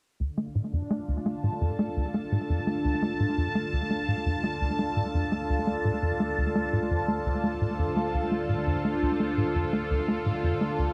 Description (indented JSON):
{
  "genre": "ambient, sequencer-driven space music",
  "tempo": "85 BPM",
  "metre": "4/4",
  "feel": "straight",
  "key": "D minor",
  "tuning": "A4 = 440 Hz",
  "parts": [
    { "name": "phased analog pad", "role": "sustained chords", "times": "0.2-10.9 s", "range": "D3 to A5", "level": "-32 LUFS", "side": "equal", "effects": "phaser, chorus" },
    { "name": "tight sequencer bass", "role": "riff", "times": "0.2-10.9 s", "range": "D2 to A3", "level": "-30 LUFS", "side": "equal", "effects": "lush chorus, analog delay" },
    { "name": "round analog bass", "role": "bass", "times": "0.2-10.9 s", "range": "D2", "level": "-46 LUFS", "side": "equal", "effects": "none" },
    { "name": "bubbling stepped-filter texture", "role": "texture", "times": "0.5-10.9 s", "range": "F4 to F5", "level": "-48 LUFS", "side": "equal", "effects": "none" }
  ],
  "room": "wet huge ambient reverb, RT60 7.7 s",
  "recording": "none",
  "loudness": "-28 LUFS",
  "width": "mono",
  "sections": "0.2-10.9 A section",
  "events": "none",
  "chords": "0.2 Dm",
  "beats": "| 0.20 0.91 1.61 2.32 | 3.02 3.73 4.43 5.14 | 5.85 6.55 7.26 7.96 | 8.67 9.38 10.08 10.79"
}